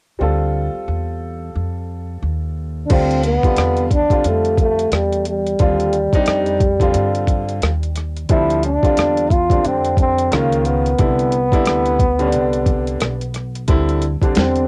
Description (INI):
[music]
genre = hip hop, jazz-hop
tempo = 89 BPM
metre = 4/4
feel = swing 60% on 16ths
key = D dorian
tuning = A4 = 440 Hz
[part]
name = warm grand piano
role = accompaniment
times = 0.2-14.7 s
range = C3 to A4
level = -24 LUFS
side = equal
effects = none
[part]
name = upright bass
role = bass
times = 0.2-14.7 s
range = B1 to G2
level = -24 LUFS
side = equal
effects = transformer saturation
[part]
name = breathy trombone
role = melody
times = 2.9-14.7 s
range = G3 to F4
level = -20 LUFS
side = equal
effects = cassette tape, analog delay
[part]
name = dusty soul sampler-style drum kit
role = drums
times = 2.9-14.7 s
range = crash cymbal, hi-hat, kick drum, rim click, snare drum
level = -20 LUFS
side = equal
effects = overdrive
[sound]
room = light reverb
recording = home recording on cassette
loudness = -17 LUFS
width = mono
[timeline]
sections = 0.2-2.9 A section; 2.9-14.7 B section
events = none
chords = 0.2 Dm9; 5.6 Ebmaj9; 8.3 Dm9; 10.3 C#69; 11.0 Cmaj9; 13.7 D7sus2